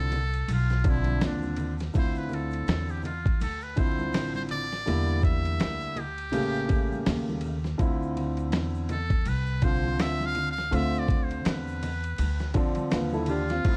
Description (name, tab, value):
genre	hip hop, jazz-hop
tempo	82 BPM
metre	4/4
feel	swing 57% on 16ths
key	D dorian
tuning	A4 = 440 Hz
part	trumpet with metal mute	melody	0.0-13.8 s	D4 to F5	-36 LUFS	equal	plate reverb
part	warm grand piano	accompaniment	0.0-13.8 s	C#3 to B4	-33 LUFS	equal	plate reverb
part	upright bass	bass	0.0-13.8 s	A1 to E2	-33 LUFS	equal	none
part	dusty soul sampler-style drum kit	drums	0.1-13.8 s	crash cymbal, hi-hat, kick drum, ride cymbal, snare drum	-30 LUFS	equal	overdrive
part	congas and tube shaker	percussion	0.1-13.6 s	none	-42 LUFS	equal	none
room	light reverb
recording	dark, warm production, vinyl crackle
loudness	-28 LUFS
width	mono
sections	0.0-1.9 A section; 1.9-13.7 B section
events	muted trumpet solo 1.9-13.7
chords	0.0 Dm7; 1.9 Dm9; 4.9 Em7b5; 6.3 A7b9; 7.8 Dm9